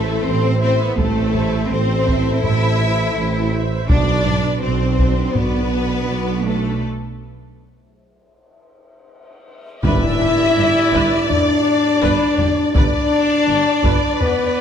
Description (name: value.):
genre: cinematic, epic orchestral film score.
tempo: 82 BPM.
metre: 4/4.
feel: straight.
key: G major.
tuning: A4 = 440 Hz.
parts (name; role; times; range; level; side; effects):
warm symphonic violin section; melody; 0.0-14.6 s; B4 to E5; -26 LUFS; left 4 dB; none.
warm symphonic violin section; second line; 0.0-14.6 s; A4 to E5; -25 LUFS; left 4 dB; none.
warm symphonic viola section; accompaniment; 0.0-14.6 s; B3 to D5; -28 LUFS; right 1 dB; none.
warm French horn section; sustained chords; 0.0-14.6 s; B3 to A4; -20 LUFS; left 2 dB; none.
dark tuba; bass; 0.0-14.0 s; G1 to B1; -25 LUFS; right 4 dB; none.
rich symphonic cello section; bass; 0.0-13.9 s; G2 to E4; -24 LUFS; right 1 dB; none.
rich symphonic double bass section; bass; 0.0-13.9 s; G1 to B1; -23 LUFS; right 2 dB; none.
taiko ensemble; drums; 1.0-14.5 s; none; -21 LUFS; equal; none.
cymbal swell and tam-tam; percussion; 6.8-12.7 s; none; -29 LUFS; left 2 dB; none.
concert flute; second line; 9.8-14.6 s; B4 to E5; -25 LUFS; left 2 dB; none.
timpani; percussion; 9.8-10.9 s; G2; -25 LUFS; right 1 dB; none.
impact; sound effects; 9.9-12.8 s; none; -31 LUFS; equal; none.
room: moderate scoring stage reverb, RT60 1.9 s.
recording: none.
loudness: -15 LUFS.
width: side -8 dB against mid.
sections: 0.0-9.8 A section; 9.8-14.6 B section.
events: break 6.8-9.8; band accent 9.8-10.6; impact 9.8-12.7.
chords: 0.0 Am; 3.9 Bm; 9.8 G.